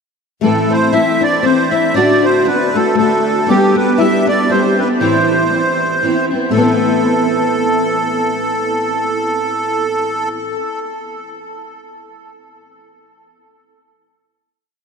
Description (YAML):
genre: celtic folk, Celtic waltz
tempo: 119 BPM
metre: 3/4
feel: swing 57% on 8ths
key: A dorian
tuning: A4 = 440 Hz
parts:
  - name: accordion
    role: melody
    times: 0.4-10.3 s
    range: G4 to E5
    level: -16 LUFS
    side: right 2 dB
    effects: light tremolo tuning, ping-pong delay
  - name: flamenco guitar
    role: second line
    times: 0.4-10.5 s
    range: G3 to E4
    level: -19 LUFS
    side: left 6 dB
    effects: ensemble chorus, ping-pong delay
  - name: fingerpicked steel-string acoustic guitar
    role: accompaniment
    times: 0.4-10.6 s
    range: A2 to G4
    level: -16 LUFS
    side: equal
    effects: ensemble chorus
room: wet huge ambient reverb, RT60 6.1 s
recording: dreamy mix soaked in reverb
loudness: -12 LUFS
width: side -5 dB against mid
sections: 0.4-6.5 A section; 6.5-9.5 final chord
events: none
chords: 0.4 Am; 2.0 D/A; 3.5 G; 5.0 Amadd9